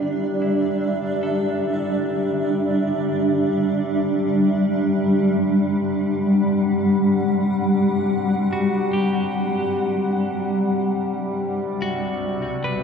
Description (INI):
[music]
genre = ambient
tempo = 74 BPM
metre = 4/4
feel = straight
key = C lydian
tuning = A4 = 440 Hz
[part]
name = granular cloud pad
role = sustained chords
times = 0.0-12.8 s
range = C3 to F#5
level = -20 LUFS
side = equal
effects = built-in reverb
[part]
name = clean electric guitar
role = arpeggios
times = 0.0-12.8 s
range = C4 to B4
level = -33 LUFS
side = left 1 dB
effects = phaser, diffuse ambient delay
[part]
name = overtone-sweeping drone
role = drone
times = 1.1-12.8 s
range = C3 to G3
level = -34 LUFS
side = equal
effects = none
[part]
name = glass harmonica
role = texture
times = 0.0-12.8 s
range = G4 to D5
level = -27 LUFS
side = left 5 dB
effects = none
[sound]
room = wet cathedral reverb, RT60 4.8 s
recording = dark, warm production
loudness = -19 LUFS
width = side -6 dB against mid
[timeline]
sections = 0.0-12.8 A section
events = fade-in on clean electric guitar 0.0-12.8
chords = 0.0 Cadd9